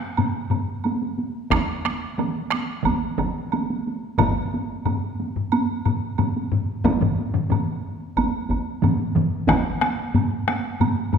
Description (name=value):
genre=japanese traditional, taiko drum ensemble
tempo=90 BPM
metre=4/4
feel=straight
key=none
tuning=none
part: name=taiko ensemble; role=percussion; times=0.0-11.2 s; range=none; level=-26 LUFS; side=right 3 dB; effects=none
part: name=taiko ensemble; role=percussion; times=0.2-11.2 s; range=none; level=-24 LUFS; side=left 4 dB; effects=none
part: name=woodblock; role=percussion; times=0.2-11.2 s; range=none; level=-30 LUFS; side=right 5 dB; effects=none
part: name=taiko ensemble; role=percussion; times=1.5-9.3 s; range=none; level=-26 LUFS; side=right 3 dB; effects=none
part: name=taiko ensemble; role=percussion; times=1.5-9.6 s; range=none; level=-25 LUFS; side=equal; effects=none
room=wet scoring stage reverb, RT60 1.8 s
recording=minimal, uncompressed stereo recording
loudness=-21 LUFS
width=side -7 dB against mid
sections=0.0-11.2 A section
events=none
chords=none